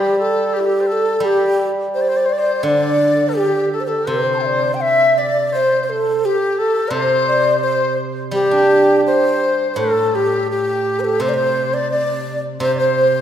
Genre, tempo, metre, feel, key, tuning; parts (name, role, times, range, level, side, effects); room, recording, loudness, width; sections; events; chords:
chinese traditional, Chinese chamber ensemble; 85 BPM; 2/4; rubato; G zhi mode; A4 = 441 Hz
breathy low xiao; melody; 0.0-13.2 s; G4 to C6; -17 LUFS; right 1 dB
bright reedy large dizi; second line; 0.0-13.2 s; E4 to G5; -21 LUFS; left 4 dB
steel-string zither; accompaniment; 0.0-13.2 s; A2 to D4; -22 LUFS; right 1 dB
wet concert hall reverb, RT60 1.9 s; recorded in a church or concert hall; -14 LUFS; side -10 dB against mid
0.0-9.8 A section; 9.8-13.2 B section